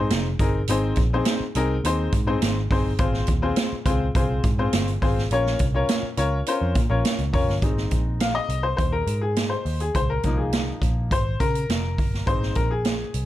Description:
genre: uptempo 1960s-style soul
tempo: 104 BPM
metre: 4/4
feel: straight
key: Ab major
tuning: A4 = 439 Hz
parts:
  - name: clear upright piano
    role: accompaniment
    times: 0.0-13.3 s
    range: F3 to F5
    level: -26 LUFS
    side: left 3 dB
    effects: plate reverb
  - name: vintage muted picked electric bass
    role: bass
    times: 0.0-13.3 s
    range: F1 to Db3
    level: -25 LUFS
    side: equal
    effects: none
  - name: swinging big-band drum kit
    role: drums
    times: 0.1-13.3 s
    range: hi-hat, kick drum, snare drum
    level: -24 LUFS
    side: right 1 dB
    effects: none
room: light reverb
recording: none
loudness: -20 LUFS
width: side -14 dB against mid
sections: 0.0-7.6 A section; 7.6-13.3 B section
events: upright piano solo 7.6-13.3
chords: 0.0 Ab; 3.0 Fm/Ab; 5.3 Bbm; 7.6 Ab; 9.9 Db6; 12.3 Ab

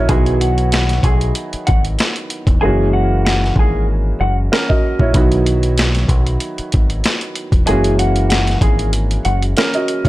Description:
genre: hip hop, boom-bap hip-hop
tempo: 95 BPM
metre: 4/4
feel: swing 55% on 16ths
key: B major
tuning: A4 = 440 Hz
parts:
  - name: dark upright piano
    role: accompaniment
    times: 0.0-10.1 s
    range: D#3 to D#5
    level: -19 LUFS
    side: right 2 dB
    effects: high-pass filter, low-pass filter
  - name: deep dub fingered electric bass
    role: bass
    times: 0.0-10.1 s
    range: E1 to B1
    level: -17 LUFS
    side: equal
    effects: none
  - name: mellow electric guitar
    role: melody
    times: 0.1-9.4 s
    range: F#4 to G#5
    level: -22 LUFS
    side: left 2 dB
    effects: vibrato effect, high-pass filter, low-pass filter, tape echo
  - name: boom bap sampler-style drum kit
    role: drums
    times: 0.1-10.1 s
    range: hi-hat, kick drum, rim click, snare drum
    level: -16 LUFS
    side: equal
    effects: none
room: digital ambience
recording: none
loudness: -13 LUFS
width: side -17 dB against mid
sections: 0.0-10.1 A section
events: hi-hats muted 2.6-5.1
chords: 0.1 B; 2.6 F#7; 5.1 B; 7.7 F#7

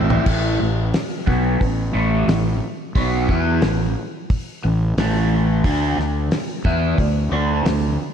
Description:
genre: classic rock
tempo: 89 BPM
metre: 4/4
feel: straight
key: A minor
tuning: A4 = 440 Hz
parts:
  - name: crunchy overdriven guitar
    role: riff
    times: 0.0-7.9 s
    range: A2 to E4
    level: -21 LUFS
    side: equal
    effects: phaser, slapback echo
  - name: fuzz fingered electric bass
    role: bass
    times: 0.0-8.0 s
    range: A1 to E2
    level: -21 LUFS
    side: equal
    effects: overdrive
  - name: damped 70s drum kit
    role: drums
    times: 0.1-7.8 s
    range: crash cymbal, hi-hat, kick drum, snare drum, toms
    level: -22 LUFS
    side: equal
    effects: none
room: moderate concert hall reverb, RT60 2.0 s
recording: big arena sound, cassette tape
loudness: -17 LUFS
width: side -8 dB against mid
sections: 0.3-8.1 A section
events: drum fill 0.0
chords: 0.3 A5; 5.6 D5

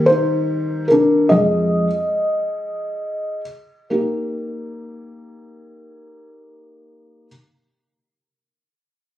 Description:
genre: pop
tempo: 44-50 BPM (dotted quarters)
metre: 6/8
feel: straight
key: Eb major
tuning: A4 = 440 Hz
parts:
  - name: felt-muted upright piano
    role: accompaniment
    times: 0.0-7.3 s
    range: F2 to Eb5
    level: -17 LUFS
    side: equal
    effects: none
room: light reverb, studio ambience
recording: recorded on a phone in the room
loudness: -17 LUFS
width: side -13 dB against mid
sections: 0.0-3.9 A section; 3.9-6.7 B section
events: slowing down 0.0-3.9; felt piano solo 0.0-3.9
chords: 0.0 Eb; 1.3 Fm7; 3.9 Eb

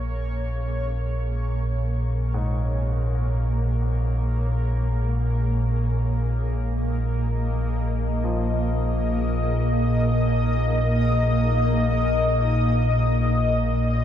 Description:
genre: ambient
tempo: free time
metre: none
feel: none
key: Bb minor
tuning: A4 = 440 Hz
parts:
  - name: granular cloud pad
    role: sustained chords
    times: 0.0-14.0 s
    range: Bb2 to Eb5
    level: -26 LUFS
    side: left 1 dB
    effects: built-in reverb
  - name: warm grand piano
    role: arpeggios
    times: 0.0-14.0 s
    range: Ab2 to F4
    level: -38 LUFS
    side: left 3 dB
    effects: ping-pong delay
  - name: deep rumbling drone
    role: drone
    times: 0.0-14.0 s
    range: Bb1 to Bb2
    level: -22 LUFS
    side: equal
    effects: built-in reverb
room: moderate huge ambient reverb, RT60 7.8 s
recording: none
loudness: -21 LUFS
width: side -10 dB against mid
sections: 0.0-14.0 A section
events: fade-in on ambient pad 0.0-14.0; fade-in on grand piano 0.0-14.0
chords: 0.0 Bbm7; 11.7 N.C.

